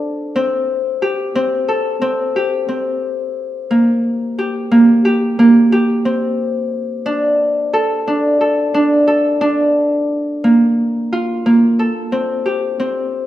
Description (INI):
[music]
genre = contemporary instrumental, contemporary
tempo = 179 BPM (eighths)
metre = 5/8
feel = straight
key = Bb major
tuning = A4 = 440 Hz
[part]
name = Celtic harp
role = solo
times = 0.0-13.3 s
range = Bb3 to A4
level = -13 LUFS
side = equal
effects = none
[sound]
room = wet recital hall reverb, RT60 1.5 s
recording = dark, warm production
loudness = -13 LUFS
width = side -13 dB against mid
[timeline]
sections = 0.0-10.4 A section; 10.4-13.3 B section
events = none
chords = 0.3 Am7; 3.7 Gm/Bb; 7.1 D5; 10.4 Bb5; 12.1 C5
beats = 0.02 | 0.35 0.68 1.02 1.35 1.69 | 2.02 2.36 2.70 3.04 3.37 | 3.71 4.05 4.38 4.72 5.05 | 5.39 5.72 6.05 6.39 6.72 | 7.06 7.39 7.73 8.06 8.40 | 8.74 9.07 9.41 9.76 10.10 | 10.45 10.79 11.13 11.46 11.80 | 12.13 12.46 12.80 13.13